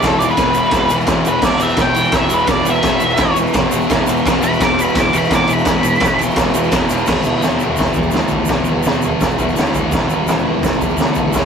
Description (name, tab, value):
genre	garage rock duo or trio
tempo	170 BPM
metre	4/4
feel	straight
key	unclear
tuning	A4 = 437 Hz
part	octave-fuzz lead guitar	melody	0.0-6.2 s	A4 to D6	-17 LUFS	equal	distortion
part	fuzz guitar	riff	0.0-11.4 s	E2 to E3	-17 LUFS	equal	distortion
part	fuzz picked electric bass	bass	0.0-11.4 s	E1 to D2	-23 LUFS	equal	overdrive, tube saturation
part	raw garage drum kit	drums	0.0-11.4 s	crash cymbal, kick drum, ride cymbal, snare drum, toms	-17 LUFS	equal	none
part	egg shaker	percussion	0.0-11.4 s	none	-33 LUFS	right 5 dB	none
room	light reverb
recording	rough rehearsal-room recording, tube saturation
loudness	-13 LUFS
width	side -7 dB against mid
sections	0.0-7.1 A section; 7.1-11.4 B section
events	lead electric guitar solo 0.0-7.1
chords	0.0 E5